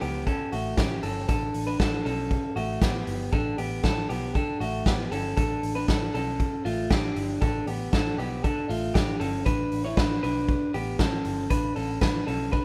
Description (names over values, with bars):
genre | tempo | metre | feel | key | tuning
jangly indie pop | 117 BPM | 4/4 | straight | unclear | A4 = 440 Hz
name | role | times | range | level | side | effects
electric guitar through a small old amp | arpeggios | 0.0-12.6 s | A3 to C#5 | -30 LUFS | equal | none
vintage muted picked electric bass | bass | 0.0-12.6 s | G1 to C#2 | -35 LUFS | equal | none
raw garage drum kit | drums | 0.0-12.6 s | hi-hat, kick drum, snare drum | -30 LUFS | equal | none
room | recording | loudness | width
little or no reverb | rough home demo mix | -27 LUFS | mono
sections
0.0-12.6 A section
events
none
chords
0.0 Gadd9; 5.4 Dm; 9.5 Bmadd9